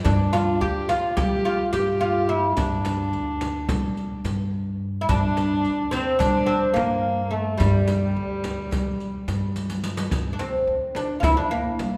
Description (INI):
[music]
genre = Turkish makam ensemble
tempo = 215 BPM (eighths)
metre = 9/8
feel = straight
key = G makam huseyni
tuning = A4 = 440 Hz
[part]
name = oud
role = melody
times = 0.0-12.0 s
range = G3 to G4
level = -27 LUFS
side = equal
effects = none
[part]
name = rich kamancheh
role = second line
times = 0.0-9.6 s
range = G3 to G4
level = -30 LUFS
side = equal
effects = none
[part]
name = riq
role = percussion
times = 0.0-11.9 s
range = none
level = -38 LUFS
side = equal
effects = none
[part]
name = upright bass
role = bass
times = 0.1-12.0 s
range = D2 to G3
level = -28 LUFS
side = equal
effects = none
[part]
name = frame drum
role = percussion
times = 0.1-11.9 s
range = none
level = -32 LUFS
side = equal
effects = none
[sound]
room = wet recital hall reverb, RT60 1.9 s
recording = none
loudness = -23 LUFS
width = mono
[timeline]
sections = 0.0-10.1 A section; 10.1-12.0 B section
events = drum fill 9.6-10.1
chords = none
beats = | 0.06 0.34 0.61 0.90 1.18 1.46 1.73 2.01 2.29 | 2.57 2.85 3.13 3.41 3.69 3.97 4.25 4.53 4.81 | 5.09 5.37 5.64 5.92 6.20 6.48 6.76 7.04 7.32 | 7.60 7.88 8.15 8.43 8.71 8.99 9.27 9.55 9.83 | 10.11 10.39 10.67 10.95 11.23 11.51 11.79